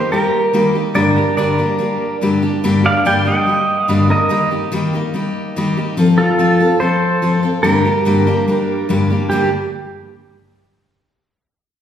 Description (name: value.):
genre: country.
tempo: 144 BPM.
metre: 4/4.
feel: straight.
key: G minor.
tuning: A4 = 440 Hz.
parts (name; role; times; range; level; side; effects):
pedal steel guitar; melody; 0.0-9.5 s; F4 to G5; -16 LUFS; right 2 dB; none.
picked steel-string acoustic guitar; accompaniment; 0.0-9.5 s; G2 to A4; -16 LUFS; left 2 dB; none.
room: wet recital hall reverb, RT60 1.4 s.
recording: heard from further back in the room, lossy compression artefacts.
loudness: -13 LUFS.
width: side -9 dB against mid.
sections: 0.0-9.3 A section; 9.3-11.0 B section.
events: none.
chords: 0.0 Eb; 1.0 Gm; 4.3 Eb; 6.0 F; 7.6 Gm.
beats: 0.12 0.54 | 0.96 1.38 1.79 2.21 | 2.63 3.05 3.46 3.88 | 4.30 4.72 5.13 5.55 | 5.97 6.39 6.80 7.22 | 7.64 8.06 8.48 8.89 | 9.31.